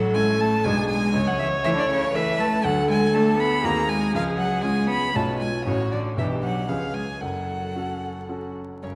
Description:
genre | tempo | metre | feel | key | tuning
quick classical-period movement for piano quartet | 119 BPM | 3/4 | rubato | F# minor | A4 = 439 Hz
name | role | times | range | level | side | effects
clear cello | second line | 0.0-9.0 s | C#3 to B3 | -29 LUFS | equal | none
warm grand piano | accompaniment | 0.0-9.0 s | F#1 to C#5 | -30 LUFS | equal | none
warm viola | accompaniment | 0.0-8.5 s | E#4 to C#5 | -30 LUFS | equal | none
warm violin | melody | 0.1-8.9 s | C#5 to B5 | -29 LUFS | equal | none
room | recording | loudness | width
wet scoring stage reverb, RT60 2.0 s | vinyl crackle | -23 LUFS | mono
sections
0.0-8.8 A section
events
none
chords
0.0 A; 0.6 G#dim/B; 1.1 A/C#; 2.6 D5; 3.6 G#7/D#; 4.1 C#; 5.1 C#7/B; 5.7 F#m/A; 6.2 G/B; 6.7 C#7; 7.2 F#m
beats
0.15 0.65 | 1.14 1.64 2.14 | 2.64 3.14 3.63 | 4.13 4.63 5.15 | 5.66 6.17 6.68 | 7.21 7.75 8.28 | 8.81

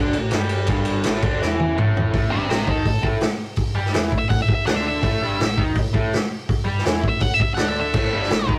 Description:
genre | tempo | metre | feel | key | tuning
garage rock duo or trio | 165 BPM | 4/4 | straight | unclear | A4 = 441 Hz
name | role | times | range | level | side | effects
raw garage guitar | riff | 0.0-8.6 s | G2 to G4 | -27 LUFS | equal | overdrive
overdriven fingered electric bass | bass | 0.0-8.6 s | G1 to G2 | -31 LUFS | equal | none
vintage drum kit | drums | 0.1-8.6 s | crash cymbal, hi-hat, kick drum, ride cymbal, snare drum, toms | -23 LUFS | equal | none
octave-fuzz lead guitar | melody | 2.3-8.5 s | G4 to F#5 | -26 LUFS | equal | distortion
room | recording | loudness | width
light reverb | rough rehearsal-room recording, tube saturation | -21 LUFS | mono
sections
0.0-2.1 A section; 2.1-8.6 B section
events
drum fill 1.4-2.1; lead electric guitar solo 2.1-8.6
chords
0.0 A5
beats
0.32 | 0.69 1.05 1.41 1.77 | 2.13 2.49 2.85 3.22 | 3.58 3.94 4.30 4.67 | 5.03 5.39 5.76 6.12 | 6.48 6.85 7.21 7.58 | 7.94 8.30

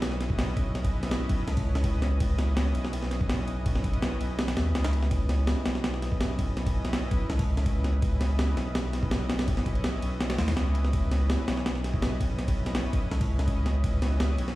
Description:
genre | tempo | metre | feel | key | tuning
drum and bass, jungle | 165 BPM | 4/4 | straight | C# minor | A4 = 440 Hz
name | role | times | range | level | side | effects
lush unison pad | sustained chords | 0.0-14.6 s | C#4 to D#5 | -36 LUFS | equal | chorus
saturated sub bass | bass | 0.0-14.6 s | B1 to D#2 | -28 LUFS | equal | none
breakbeat sampler-style drum kit | drums | 0.0-14.6 s | kick drum, ride cymbal, snare drum | -28 LUFS | equal | small room reverb
room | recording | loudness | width
little or no reverb | played on a big sound system in a bare room, large studio reverb, vinyl crackle | -25 LUFS | side -17 dB against mid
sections
0.0-14.6 A section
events
none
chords
0.0 C#m9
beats
0.02 0.39 | 0.75 1.11 1.48 1.84 | 2.20 2.57 2.93 3.29 | 3.66 4.02 4.39 4.75 | 5.11 5.48 5.84 6.20 | 6.57 6.93 7.29 7.66 | 8.02 8.39 8.75 9.11 | 9.48 9.84 10.20 10.57 | 10.93 11.29 11.66 12.02 | 12.39 12.75 13.11 13.48 | 13.84 14.20

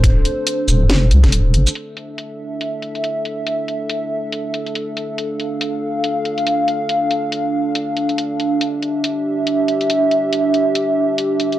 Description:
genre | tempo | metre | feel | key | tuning
deep dubstep | 140 BPM | 4/4 | swing 59% on 16ths, half-time | D minor | A4 = 438 Hz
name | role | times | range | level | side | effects
dark analog pad | sustained chords | 0.0-11.6 s | D4 to F5 | -18 LUFS | right 1 dB | chorus
deep soft wobble bass | bass | 0.0-1.7 s | D1 to D2 | -13 LUFS | equal | chorus
electronic kick drum | drums | 0.0-1.3 s | none | -16 LUFS | equal | none
garage drum kit | drums | 0.0-11.6 s | hi-hat, shaker, snare drum | -22 LUFS | left 1 dB | low-pass filter on hats, low-pass filter on snare, low-pass filter on perc
room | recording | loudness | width
light reverb | dry, gritty hardware recording | -16 LUFS | side -13 dB against mid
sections
0.0-1.8 A section; 1.8-11.6 B section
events
break 1.3-1.8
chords
0.0 Dm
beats
| 0.04 0.47 0.90 1.32 | 1.75 2.18 2.61 3.04 | 3.47 3.90 4.32 4.75 | 5.18 5.61 6.04 6.47 | 6.89 7.32 7.75 8.18 | 8.61 9.04 9.47 9.89 | 10.32 10.75 11.18

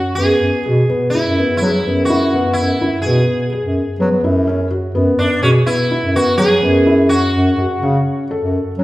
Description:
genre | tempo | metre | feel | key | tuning
contemporary instrumental, chamber music in an uneven meter | 125 BPM | 5/4 | straight | unclear | A4 = 440 Hz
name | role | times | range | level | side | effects
sitar | melody | 0.0-8.8 s | C#4 to G#4 | -19 LUFS | right 1 dB | none
felt-muted upright piano | arpeggios | 0.0-8.8 s | B3 to A4 | -18 LUFS | left 1 dB | none
mellow bass clarinet | bass | 0.2-8.8 s | F#2 to F#3 | -16 LUFS | equal | none
room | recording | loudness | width
wet recital hall reverb, RT60 1.6 s | heard from further back in the room | -13 LUFS | side -17 dB against mid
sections
0.0-8.8 A section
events
none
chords
0.2 E/F#; 7.3 F#m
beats
| 0.18 0.66 1.14 1.62 2.10 | 2.58 3.06 3.53 4.01 4.48 | 4.96 5.43 5.91 6.38 6.86 | 7.34 7.82 8.30 8.78

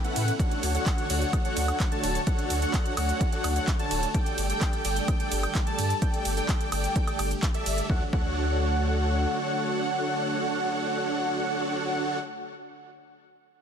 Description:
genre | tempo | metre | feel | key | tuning
EDM, festival progressive house | 128 BPM | 4/4 | straight | D major | A4 = 440 Hz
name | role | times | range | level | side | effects
lush unison pad | sustained chords | 0.0-11.9 s | C#3 to C#5 | -34 LUFS | equal | chorus, sidechain pumping
wide unison lead | arpeggios | 0.0-12.2 s | E5 to A5 | -32 LUFS | equal | analog chorus, vintage 12-bit sampler grit, sidechain pumping, ping-pong delay
dense compressed supersaw | riff | 0.0-12.2 s | C#4 to A5 | -31 LUFS | right 1 dB | sidechain pumping, ping-pong delay
big-room dance drum kit | drums | 0.0-7.9 s | handclaps, hi-hat, ride cymbal, shaker, woodblock | -34 LUFS | right 3 dB | none
saturated sub bass | bass | 0.2-9.3 s | D1 to A2 | -28 LUFS | equal | sidechain pumping
electronic kick drum | drums | 0.4-8.3 s | none | -26 LUFS | equal | none
room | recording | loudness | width
light reverb, digital ambience | dense, heavily limited modern master | -24 LUFS | side -8 dB against mid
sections
0.0-7.9 A section; 7.9-11.6 B section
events
drop 0.0-7.9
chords
0.4 Dmaj7; 4.1 Gsus2; 7.9 Dmaj7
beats
| 0.40 0.86 1.33 1.80 | 2.27 2.74 3.21 3.68 | 4.15 4.61 5.08 5.55 | 6.02 6.49 6.96 7.43 | 7.90 8.36 8.83 9.30 | 9.77 10.24 10.71 11.18

